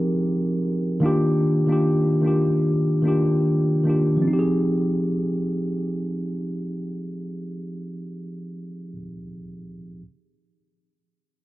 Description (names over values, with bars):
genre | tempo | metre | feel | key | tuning
hip hop | 74 BPM | 4/4 | swing 63% on 16ths | F dorian | A4 = 440 Hz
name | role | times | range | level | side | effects
tine electric piano | accompaniment | 0.0-10.0 s | Eb3 to Bb4 | -21 LUFS | equal | cassette tape
room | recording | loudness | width
light reverb | cassette tape | -20 LUFS | side -17 dB against mid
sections
0.0-4.3 A section; 4.3-7.5 B section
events
none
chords
0.0 Fm9; 1.0 Ebmaj9; 4.3 Fm9